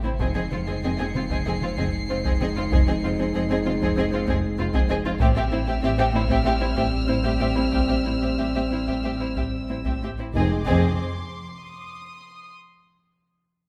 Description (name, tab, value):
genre	cinematic, suspense film score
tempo	96 BPM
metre	4/4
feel	straight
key	unclear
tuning	A4 = 440 Hz
part	warm chamber violin section	melody	0.0-11.0 s	C5 to E5	-37 LUFS	equal	none
part	warm chamber violin section	second line	0.0-11.0 s	E4 to Ab4	-33 LUFS	equal	none
part	warm chamber viola section	accompaniment	0.0-11.0 s	C4	-32 LUFS	equal	none
part	warm chamber cello section	bass	0.0-11.0 s	F2 to A2	-33 LUFS	equal	none
part	pure sine sub bass	drone	0.0-10.7 s	F1 to A1	-33 LUFS	equal	none
part	mellow French horn section	sustained chords	0.2-10.6 s	G3 to Eb4	-31 LUFS	equal	none
part	warm chamber double bass section	bass	0.2-11.0 s	F1 to A1	-33 LUFS	equal	none
part	taiko ensemble	drums	0.2-11.9 s	none	-29 LUFS	equal	none
part	warm chamber violin section	texture	0.2-12.5 s	C6 to Db7	-39 LUFS	equal	none
part	timpani	percussion	10.3-11.0 s	F2	-37 LUFS	equal	none
room	wet recital hall reverb, RT60 1.4 s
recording	recorded in a church or concert hall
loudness	-24 LUFS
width	mono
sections	0.0-10.3 A section; 10.3-12.9 B section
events	none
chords	0.2 Fm7; 5.2 Am7; 10.3 Fm7